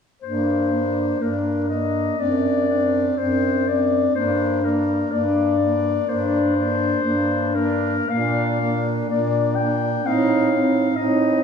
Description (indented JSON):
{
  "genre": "classical, lyrical piece for single-reed quartet",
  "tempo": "55-67 BPM",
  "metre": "4/4",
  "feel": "rubato",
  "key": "G minor",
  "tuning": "A4 = 440 Hz",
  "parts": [
    { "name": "bright clarinet", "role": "melody", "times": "0.2-11.4 s", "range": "Bb4 to G5", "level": "-23 LUFS", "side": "left 7 dB", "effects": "none" },
    { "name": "clear alto saxophone", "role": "second line", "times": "0.2-11.4 s", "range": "D4 to Eb4", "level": "-25 LUFS", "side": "right 4 dB", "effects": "none" },
    { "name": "warm tenor saxophone", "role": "accompaniment", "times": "0.2-11.4 s", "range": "Bb3 to C4", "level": "-25 LUFS", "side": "right 1 dB", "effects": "none" },
    { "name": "clear bass clarinet", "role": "bass", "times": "0.2-11.4 s", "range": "F#2 to Bb2", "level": "-23 LUFS", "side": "left 1 dB", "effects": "none" }
  ],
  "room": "wet recital hall reverb, RT60 1.4 s",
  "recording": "heard from further back in the room, studio reverb",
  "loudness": "-18 LUFS",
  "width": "side -6 dB against mid",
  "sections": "0.2-11.4 A section",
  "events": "none",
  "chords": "0.2 Gm; 2.2 D7/F#; 4.2 Gm; 8.1 Bb; 10.1 F7/A",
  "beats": "| 0.24 1.21 2.20 3.18 | 4.15 5.11 6.07 7.04 | 8.09 9.10 10.06 10.98"
}